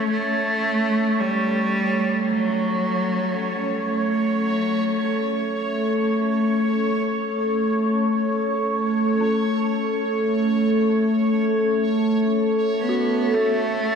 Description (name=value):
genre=dark ambient drone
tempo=free time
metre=none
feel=none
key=unclear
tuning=A4 = 440 Hz
part: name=rich cello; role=melody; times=0.0-3.9, 12.8-14.0 s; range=F#3 to B3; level=-25 LUFS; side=equal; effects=ping-pong delay
part: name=granular cloud pad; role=sustained chords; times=0.0-14.0 s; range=A3 to A4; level=-34 LUFS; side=left 2 dB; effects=built-in reverb
part: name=dark detuned synth bell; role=arpeggios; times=0.0-14.0 s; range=C#4 to F#4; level=-35 LUFS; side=right 2 dB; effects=chorus, ping-pong delay
part: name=analog drone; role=drone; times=0.0-14.0 s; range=A3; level=-21 LUFS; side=left 1 dB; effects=chorus
part: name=bubbling stepped-filter texture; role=texture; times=0.0-14.0 s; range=C#5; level=-27 LUFS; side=right 3 dB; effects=chorus, built-in reverb
room=wet cathedral reverb, RT60 5.1 s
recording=none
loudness=-19 LUFS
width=side -6 dB against mid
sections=0.0-14.0 A section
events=fade-in on ambient pad 0.0-14.0; fade-in on synth bell 0.0-14.0; fade-out on synth texture 0.0-14.0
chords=0.0 F#m (rootless)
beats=free time